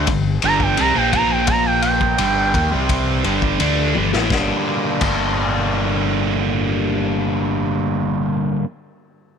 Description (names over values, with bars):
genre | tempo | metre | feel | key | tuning
psychedelic rock | 85 BPM | 4/4 | straight | G minor | A4 = 440 Hz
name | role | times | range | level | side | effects
expressive portamento lead | melody | 0.0-3.2 s | G5 to Bb5 | -20 LUFS | right 4 dB | chorus, tape echo
overdriven electric guitar | riff | 0.0-8.7 s | G2 to D4 | -19 LUFS | equal | phaser
growling fingered electric bass | bass | 0.0-8.6 s | G1 to Eb2 | -24 LUFS | equal | overdrive
raw garage drum kit | drums | 0.1-5.2 s | crash cymbal, kick drum, ride cymbal, snare drum, toms | -23 LUFS | left 4 dB | none
room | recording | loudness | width
small room ambience | 1960s-style stereo | -16 LUFS | side -7 dB against mid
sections
0.0-4.3 A section; 4.3-7.1 B section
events
analog synth lead solo 0.0-4.3; drum fill 4.0-4.3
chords
0.0 G5; 1.0 Bb5; 2.2 G5; 4.3 Gm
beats
0.07 0.78 | 1.48 2.19 2.90 3.60 | 4.31 5.01 5.72 6.43